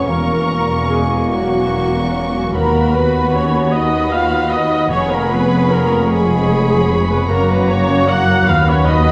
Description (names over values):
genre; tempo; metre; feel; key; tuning
classical, slow romantic movement for symphony orchestra; 50 BPM (dotted quarters); 6/8; rubato; F# major; A4 = 442 Hz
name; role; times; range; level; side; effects
muted symphonic violin section; melody; 0.0-9.1 s; A#5 to C#6; -30 LUFS; equal; none
mellow hollow concert flute; second line; 0.0-9.1 s; F#5 to F#6; -27 LUFS; equal; none
mellow oboe; second line; 0.0-9.1 s; B5 to C#6; -29 LUFS; equal; none
muted symphonic violin section; second line; 0.0-9.1 s; C#4 to C#5; -30 LUFS; equal; none
warm clarinet; second line; 0.0-9.1 s; F#4 to G#4; -31 LUFS; equal; none
muted symphonic viola section; accompaniment; 0.0-9.1 s; F#4 to F#5; -22 LUFS; equal; none
warm bassoon; accompaniment; 0.0-9.1 s; A#3 to B3; -26 LUFS; equal; none
dark French horn section; sustained chords; 0.0-9.1 s; F#3 to F#4; -25 LUFS; equal; none
concert harp; arpeggios; 0.0-9.1 s; E#2 to C#5; -27 LUFS; equal; none
muted symphonic cello section; bass; 0.0-9.1 s; D#2 to F#2; -23 LUFS; equal; none
muted symphonic double bass section; bass; 0.0-9.1 s; E1 to D#2; -22 LUFS; equal; none
room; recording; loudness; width
moderate concert hall reverb, RT60 2.4 s; vinyl crackle; -15 LUFS; mono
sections
0.0-9.1 A section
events
none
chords
0.1 F#7/E; 2.5 B/D#; 4.9 C#7/E#; 7.3 F#; 8.5 B/D#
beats
| 0.08 1.33 | 2.55 3.72 | 4.91 6.11 | 7.29 8.48